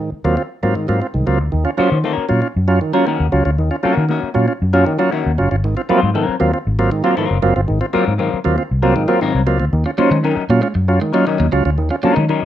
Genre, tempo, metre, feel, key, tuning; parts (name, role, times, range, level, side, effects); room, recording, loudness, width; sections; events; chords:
funk; 117 BPM; 4/4; straight; Eb dorian; A4 = 442 Hz
bright tonewheel organ; stabs; 0.0-12.4 s; Ab2 to F4; -17 LUFS; right 2 dB; overdrive, slow rotary speaker
vintage muted fingered electric bass; bass; 0.1-12.4 s; Gb1 to Eb3; -17 LUFS; equal
semi-hollow electric guitar; accompaniment; 1.8-12.4 s; Gb3 to C5; -20 LUFS; left 7 dB; phaser
electric guitar at the edge of break-up; riff; 9.9-12.3 s; Ab3 to Bb3; -22 LUFS; right 5 dB
moderate studio reverb, RT60 0.6 s; rough home demo mix; -14 LUFS; side -11 dB against mid
0.0-1.5 A section; 1.5-12.4 B section
0.0 Ab13; 1.5 Ebm7; 5.6 Ab13